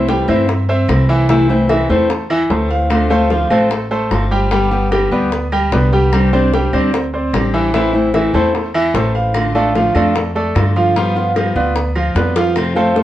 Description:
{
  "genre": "latin, Cuban son and guajira",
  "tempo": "149 BPM",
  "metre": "4/4",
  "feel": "straight",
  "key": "C major",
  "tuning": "A4 = 440 Hz",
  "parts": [
    { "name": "fingerpicked steel-string acoustic guitar", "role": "accompaniment", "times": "0.0-13.0 s", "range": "C3 to G4", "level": "-17 LUFS", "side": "left 1 dB", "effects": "none" },
    { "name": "bright grand piano", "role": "arpeggios", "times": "0.0-13.0 s", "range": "E3 to G5", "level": "-17 LUFS", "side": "right 2 dB", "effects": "none" },
    { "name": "upright bass", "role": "bass", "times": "0.0-13.0 s", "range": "G1 to G2", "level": "-18 LUFS", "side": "equal", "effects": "none" },
    { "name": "bongos", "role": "percussion", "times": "0.1-13.0 s", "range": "none", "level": "-23 LUFS", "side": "left 4 dB", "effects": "none" },
    { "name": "claves", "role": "percussion", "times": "0.3-12.8 s", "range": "none", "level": "-30 LUFS", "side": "right 4 dB", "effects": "none" }
  ],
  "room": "moderate studio reverb, RT60 0.8 s",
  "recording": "worn, warbling old tape, cassette tape, warbly pitch drift",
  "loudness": "-12 LUFS",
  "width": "side -13 dB against mid",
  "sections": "0.0-12.6 A section",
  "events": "drum fill 12.4",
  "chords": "0.0 C6; 1.3 Am/C; 2.9 Dm7; 4.5 G; 6.1 Csus2; 7.7 Am; 9.3 Dm/A; 11.0 G7"
}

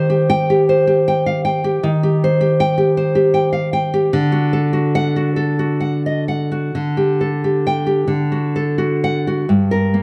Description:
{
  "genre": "romantic piece for solo classical guitar",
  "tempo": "41-53 BPM (dotted quarters)",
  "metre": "6/8",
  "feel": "rubato",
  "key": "unclear",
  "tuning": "A4 = 440 Hz",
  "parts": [
    { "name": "nylon-string guitar", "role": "solo", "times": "0.0-10.0 s", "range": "G2 to G5", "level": "-17 LUFS", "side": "equal", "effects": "none" }
  ],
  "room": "moderate recital hall reverb, RT60 1.7 s",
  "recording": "dark, warm production",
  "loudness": "-17 LUFS",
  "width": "mono",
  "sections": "0.0-9.5 A section",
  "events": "none",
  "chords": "0.0 Cm/Eb; 4.1 D; 6.7 Dsus4; 8.1 D; 9.5 Gm"
}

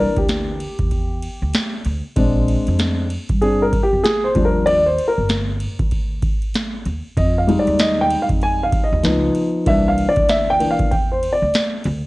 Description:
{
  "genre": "hip hop, jazz-hop",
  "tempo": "96 BPM",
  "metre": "4/4",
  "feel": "swing 61% on 16ths",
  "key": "unclear",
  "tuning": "A4 = 441 Hz",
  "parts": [
    { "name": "dark baby grand piano", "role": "accompaniment", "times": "0.0-11.6 s", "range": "E3 to Ab5", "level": "-18 LUFS", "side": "left 1 dB", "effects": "plate reverb" },
    { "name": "upright bass", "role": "bass", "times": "0.0-12.0 s", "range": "G1 to G2", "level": "-22 LUFS", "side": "equal", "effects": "none" },
    { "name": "booming analog drum machine", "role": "drums", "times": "0.2-12.0 s", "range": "hi-hat, kick drum, ride cymbal, snare drum", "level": "-21 LUFS", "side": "equal", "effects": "vintage 12-bit sampler grit" }
  ],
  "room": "light reverb",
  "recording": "worn, warbling old tape, cassette tape, warbly pitch drift",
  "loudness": "-16 LUFS",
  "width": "side -20 dB against mid",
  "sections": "0.0-12.1 A section",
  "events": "grand piano solo 0.0-12.1",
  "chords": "0.0 C9 (rootless); 2.2 Bb7; 4.4 Ebmaj9; 7.2 Fm9; 9.0 Db9; 9.7 C9"
}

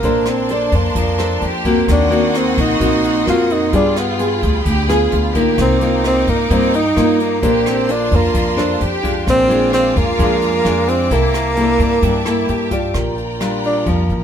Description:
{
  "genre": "bossa nova",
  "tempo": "130 BPM",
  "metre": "4/4",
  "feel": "straight",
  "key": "Bb major",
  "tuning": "A4 = 440 Hz",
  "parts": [
    { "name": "breathy tenor saxophone", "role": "melody", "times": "0.0-14.2 s", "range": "Bb3 to F4", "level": "-17 LUFS", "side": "right 1 dB", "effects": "none" },
    { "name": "warm studio violin section", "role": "second line", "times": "0.0-12.9 s", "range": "D4 to Ab4", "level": "-24 LUFS", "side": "equal", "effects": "none" },
    { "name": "nylon-string guitar", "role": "accompaniment", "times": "0.0-14.2 s", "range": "Bb2 to D5", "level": "-18 LUFS", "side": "left 1 dB", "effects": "none" },
    { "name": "bright studio string section", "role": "sustained chords", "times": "0.0-14.2 s", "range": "Bb3 to Eb6", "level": "-26 LUFS", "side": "equal", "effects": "none" },
    { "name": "upright bass", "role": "bass", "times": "0.0-14.2 s", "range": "A1 to G2", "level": "-21 LUFS", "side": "equal", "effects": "none" },
    { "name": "jazz brush drum kit", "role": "drums", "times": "0.0-14.2 s", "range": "hi-hat, kick drum, rim click", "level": "-24 LUFS", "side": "equal", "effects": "none" }
  ],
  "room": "moderate studio reverb, RT60 0.5 s",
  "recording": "minimal, uncompressed stereo recording",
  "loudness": "-13 LUFS",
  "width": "side -8 dB against mid",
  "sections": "0.0-12.9 A section; 12.9-14.2 B section",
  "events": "tenor saxophone solo 12.9-14.2",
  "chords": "0.0 Bbmaj9; 1.9 Ebm6; 3.7 G7b9; 5.6 Cm11; 7.4 Bbmaj9; 9.3 Bb7; 11.1 C13; 12.9 Bb6"
}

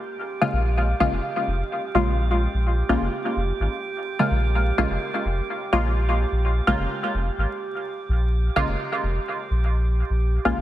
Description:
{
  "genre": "dub techno",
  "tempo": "127 BPM",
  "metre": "4/4",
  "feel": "straight",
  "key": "Bb dorian",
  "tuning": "A4 = 440 Hz",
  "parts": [
    { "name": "drifting glass-harmonics texture", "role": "texture", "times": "0.0-10.6 s", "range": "G4", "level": "-32 LUFS", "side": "right 6 dB", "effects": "chorus, built-in reverb" },
    { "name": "filtered dub chord stab", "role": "stabs", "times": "0.4-10.6 s", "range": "Db3 to F4", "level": "-24 LUFS", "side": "left 1 dB", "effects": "chorus, phaser, dub echo" },
    { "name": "warm sub bass", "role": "bass", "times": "0.5-10.6 s", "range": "F1 to Bb1", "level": "-22 LUFS", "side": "equal", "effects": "none" }
  ],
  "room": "light reverb, digital ambience",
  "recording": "dense, heavily limited modern master, vinyl crackle",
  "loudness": "-21 LUFS",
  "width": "side -13 dB against mid",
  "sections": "0.0-10.6 A section",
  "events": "none",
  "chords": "0.0 Bbm7"
}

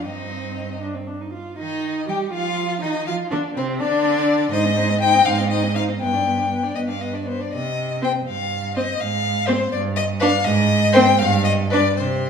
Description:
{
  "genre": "quick classical-period movement for string quartet",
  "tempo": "80 BPM (dotted quarters)",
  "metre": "6/8",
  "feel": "rubato",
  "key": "unclear",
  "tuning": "A4 = 440 Hz",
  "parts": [
    { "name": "warm violin", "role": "melody", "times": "0.0-12.3 s", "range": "C5 to G5", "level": "-21 LUFS", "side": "left 6 dB", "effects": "none" },
    { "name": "rich violin", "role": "second line", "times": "0.0-11.8 s", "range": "C4 to Eb5", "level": "-27 LUFS", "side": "left 1 dB", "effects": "none" },
    { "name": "rich viola", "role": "accompaniment", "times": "0.0-11.8 s", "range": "B3 to G4", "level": "-24 LUFS", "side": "right 2 dB", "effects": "none" },
    { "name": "rich cello", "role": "bass", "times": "0.0-12.3 s", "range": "G2 to G3", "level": "-24 LUFS", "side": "right 4 dB", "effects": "none" }
  ],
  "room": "wet recital hall reverb, RT60 1.6 s",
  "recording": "small room ambience",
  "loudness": "-18 LUFS",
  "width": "side -6 dB against mid",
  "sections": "0.0-1.6 A section; 1.6-12.3 B section",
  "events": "none",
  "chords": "0.1 Cm/G; 0.8 G5; 1.6 Ebadd9; 3.1 F5; 3.8 N.C.; 4.5 Ab; 6.0 G; 7.5 Cm; 9.0 Fm/Ab; 9.7 G5; 10.4 Ab; 11.2 G5"
}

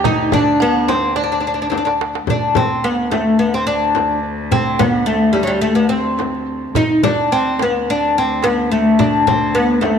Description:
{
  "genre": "Turkish makam ensemble",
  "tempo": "107 BPM",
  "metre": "4/4",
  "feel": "straight",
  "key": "D makam hicaz",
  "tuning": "A4 = 439 Hz",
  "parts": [
    { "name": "oud", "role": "melody", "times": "0.0-10.0 s", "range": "F#3 to Eb4", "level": "-15 LUFS", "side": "left 1 dB", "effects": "tape echo" },
    { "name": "bluegrass banjo", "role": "second line", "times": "0.0-2.0 s", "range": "B3-40c to Eb4", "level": "-23 LUFS", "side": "right 8 dB", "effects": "none" },
    { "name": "rich cello", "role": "drone", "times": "0.0-10.0 s", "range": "D2", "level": "-26 LUFS", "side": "left 2 dB", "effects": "stereo widening" },
    { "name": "darbuka", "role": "percussion", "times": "0.0-10.0 s", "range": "none", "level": "-23 LUFS", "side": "right 7 dB", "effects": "none" },
    { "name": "frame drum", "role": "percussion", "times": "0.1-10.0 s", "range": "none", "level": "-23 LUFS", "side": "left 10 dB", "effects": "none" }
  ],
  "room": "moderate echo chamber reverb, RT60 1.9 s",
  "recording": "1960s-style stereo with parts hard left and right",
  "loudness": "-14 LUFS",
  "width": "side -7 dB against mid",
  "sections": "0.0-2.3 A section; 2.3-10.0 B section",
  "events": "drum fill 1.7-2.3",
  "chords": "none"
}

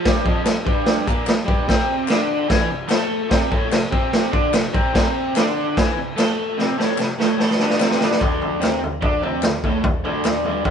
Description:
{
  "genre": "garage rock duo or trio",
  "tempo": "147 BPM",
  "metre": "4/4",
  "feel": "straight",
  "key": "unclear",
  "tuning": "A4 = 444 Hz",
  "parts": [
    { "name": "raw garage guitar", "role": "riff", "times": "0.0-10.7 s", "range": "D2 to A4", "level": "-21 LUFS", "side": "equal", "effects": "overdrive, spring reverb" },
    { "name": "raw garage drum kit", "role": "drums", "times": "0.1-10.7 s", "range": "crash cymbal, kick drum, snare drum, toms", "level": "-19 LUFS", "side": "equal", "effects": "none" },
    { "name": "group handclap", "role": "percussion", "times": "0.5-10.3 s", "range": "none", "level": "-34 LUFS", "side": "left 6 dB", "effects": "none" }
  ],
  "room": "moderate stone room reverb, RT60 1.1 s",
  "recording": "band playing live in one room, nothing above 10.3 kHz",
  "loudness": "-17 LUFS",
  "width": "side -7 dB against mid",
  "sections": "0.0-8.2 A section; 8.2-10.7 B section",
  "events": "drum fill 6.6-8.2",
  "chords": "0.0 Fsus24; 1.7 Amadd11; 8.2 D5"
}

